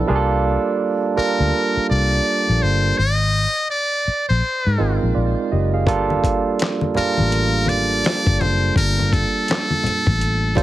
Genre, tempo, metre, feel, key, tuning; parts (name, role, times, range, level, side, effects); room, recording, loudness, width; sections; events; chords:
R&B, neo-soul; 83 BPM; 4/4; swing 62% on 16ths; G minor; A4 = 437 Hz
barky tine electric piano; accompaniment; 0.0-10.6 s; F3 to A5; -21 LUFS; right 4 dB; overdrive
vintage muted fingered electric bass; bass; 0.1-10.6 s; F#1 to Ab2; -20 LUFS; left 1 dB
trumpet with metal mute; melody; 1.2-10.6 s; A4 to Eb5; -21 LUFS; left 1 dB; tape echo
dusty soul sampler-style drum kit; drums; 5.9-10.6 s; handclaps, hi-hat, kick drum, snare drum; -22 LUFS; left 1 dB
congas; percussion; 6.1-10.6 s; -26 LUFS; left 4 dB
light reverb; heavily compressed radio sound; -16 LUFS; side -14 dB against mid
0.0-10.6 A section
0.1 C13sus4; 3.0 Ab69; 5.9 Gm9